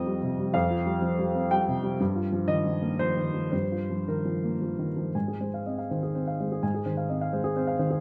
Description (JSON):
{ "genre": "neoclassical minimalist piano", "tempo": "108-129 BPM", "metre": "3/4", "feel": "rubato", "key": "Ab major", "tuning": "A4 = 435 Hz", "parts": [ { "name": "warm upright piano", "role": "solo", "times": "0.0-8.0 s", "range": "F2 to Ab5", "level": "-28 LUFS", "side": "equal", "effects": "none" } ], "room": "light reverb", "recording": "none", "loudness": "-28 LUFS", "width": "mono", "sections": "0.0-5.1 A section; 5.1-8.0 B section", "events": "none", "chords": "0.0 Fsus2; 2.0 Ebadd9/G; 5.1 Ab6" }